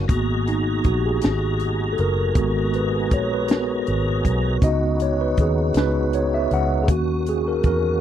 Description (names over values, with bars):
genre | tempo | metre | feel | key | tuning
slow six-eight R&B | 53 BPM (dotted quarters) | 6/8 | straight | G# minor | A4 = 442 Hz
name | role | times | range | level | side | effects
mellow tine electric piano | accompaniment | 0.0-8.0 s | G#3 to F#5 | -22 LUFS | equal | medium stereo tremolo
tonewheel organ | sustained chords | 0.0-8.0 s | C#3 to A#5 | -30 LUFS | left 1 dB | chorus vibrato, slow rotary speaker
vintage muted fingered electric bass | bass | 0.0-8.0 s | F#1 to E2 | -23 LUFS | equal | none
compact cocktail drum kit | drums | 0.1-7.8 s | hi-hat, kick drum, snare drum | -20 LUFS | equal | none
room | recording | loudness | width
little or no reverb | dry, close 1970s-style studio recording, lossy compression artefacts | -18 LUFS | side -10 dB against mid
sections
0.1-8.0 A section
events
tine electric piano solo 0.1-8.0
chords
0.1 G#m9; 4.6 C#9sus4; 6.9 D#m7